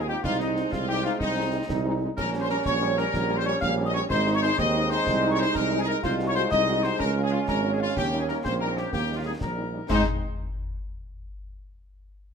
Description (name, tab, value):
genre	military-style march for wind band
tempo	124 BPM (dotted quarters)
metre	6/8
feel	straight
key	Ab major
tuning	A4 = 442 Hz
part	dark trumpet section	melody	0.0-10.0 s	Eb4 to F5	-31 LUFS	left 2 dB	none
part	clear euphonium	second line	0.0-9.7 s	G3 to F4	-31 LUFS	right 5 dB	none
part	clear woodwind section	second line	0.0-10.0 s	Eb4 to F5	-32 LUFS	left 3 dB	none
part	mellow hollow piccolo	second line	0.0-10.1 s	Eb5 to F6	-33 LUFS	left 4 dB	none
part	dark trombone section	sustained chords	0.0-10.0 s	Eb3 to Eb4	-33 LUFS	right 2 dB	none
part	mellow tuba	bass	0.0-10.0 s	Ab1 to Ab2	-28 LUFS	right 3 dB	none
part	mellow French horn section	accompaniment	0.1-10.0 s	G3 to Gb4	-34 LUFS	left 4 dB	none
part	concert snare drum, clash cymbals and concert bass drum	drums	0.2-10.1 s	none	-35 LUFS	left 2 dB	none
room	wet large studio reverb, RT60 1.3 s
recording	none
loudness	-23 LUFS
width	side -6 dB against mid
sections	0.0-9.9 A section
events	none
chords	0.2 Ab/C; 2.2 Gdim/Bb; 4.1 Ab; 5.1 Ab/C; 6.0 Ab7/C; 7.0 Db; 8.0 Eb7; 9.9 Ab